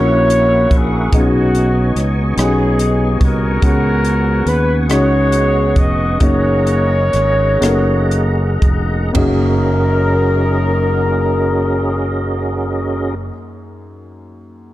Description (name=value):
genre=slow gospel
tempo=37-48 BPM (dotted quarters)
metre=6/8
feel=straight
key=F# major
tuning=A4 = 440 Hz
part: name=mellow horn section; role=melody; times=0.0-13.1 s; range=C#4 to D#5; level=-18 LUFS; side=left 1 dB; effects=none
part: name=warm upright piano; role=accompaniment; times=0.0-14.7 s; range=F#2 to A#4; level=-20 LUFS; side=left 2 dB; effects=none
part: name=tonewheel organ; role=sustained chords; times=0.0-13.2 s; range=B3 to C#6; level=-22 LUFS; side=right 2 dB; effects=slow rotary speaker, chorus vibrato
part: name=fingered electric bass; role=bass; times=0.0-13.3 s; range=E#1 to D#2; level=-17 LUFS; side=equal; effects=none
part: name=crisp fusion drum kit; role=drums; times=0.3-9.4 s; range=hi-hat, kick drum, ride cymbal, rim click, toms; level=-17 LUFS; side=equal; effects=none
room=light reverb, small room ambience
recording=dark, warm production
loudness=-12 LUFS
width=side -15 dB against mid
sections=0.0-9.2 A section; 9.2-12.4 B section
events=slowing down 3.6-9.2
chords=0.0 F#7/A#; 1.1 B69; 3.6 C#7sus4; 4.9 C#9sus4; 6.2 F#69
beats=| 1.12 2.38 | 3.63 4.90 | 6.22 7.62 | 9.16 10.77